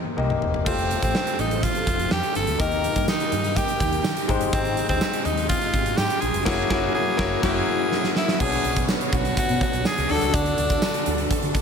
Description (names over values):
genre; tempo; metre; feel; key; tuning
1980s-style pop; 124 BPM; 4/4; straight; B dorian from 8.4 s; A4 = 441 Hz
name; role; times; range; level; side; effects
raspy tenor saxophone; melody; 0.0-11.3 s; Eb3 to Bb4; -26 LUFS; equal; ping-pong delay
bright grand piano; accompaniment; 0.0-11.6 s; Ab2 to Eb5; -27 LUFS; left 5 dB; none
fretless electric bass; bass; 0.2-11.5 s; E1 to Eb3; -29 LUFS; equal; lush chorus
huge arena drum kit; drums; 0.2-11.6 s; crash cymbal, hi-hat, kick drum, snare drum, tambourine, toms; -24 LUFS; right 1 dB; gated reverb
phased string machine; sustained chords; 0.9-11.6 s; D3 to C#5; -31 LUFS; right 1 dB; ensemble chorus, phaser
room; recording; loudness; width
light reverb, studio reverb; none; -20 LUFS; side -6 dB against mid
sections
0.7-8.4 A section; 8.4-11.6 B section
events
drum fill 0.0-0.7, 7.9-8.4; band accent 6.5-8.4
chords
0.0 Cm7; 0.7 Fadd9; 2.6 Eb; 4.3 Abmaj7; 6.5 Gb7; 8.4 Bmadd9; 10.1 D